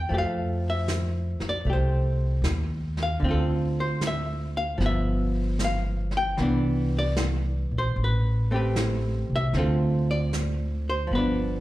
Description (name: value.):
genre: jazz ballad.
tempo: 76 BPM.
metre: 4/4.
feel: swing 68% on 8ths.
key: unclear.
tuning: A4 = 440 Hz.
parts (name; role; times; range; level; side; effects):
archtop guitar, miked and amplified; accompaniment; 0.0-11.6 s; D3 to G5; -27 LUFS; equal; plate reverb, slapback echo.
upright bass; bass; 0.0-11.6 s; G1 to F2; -26 LUFS; equal; none.
jazz brush drum kit; drums; 0.1-11.6 s; brushed snare drum, hi-hat, snare drum; -34 LUFS; right 1 dB; slapback echo.
room: light reverb.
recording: live gig heard through the venue's PA, club reverb.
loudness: -23 LUFS.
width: side -16 dB against mid.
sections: 0.0-11.6 A section.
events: none.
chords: 0.1 Fmaj9; 3.2 Dm7; 4.8 G6; 6.4 Cmaj9; 8.0 Am9; 9.5 Dm7.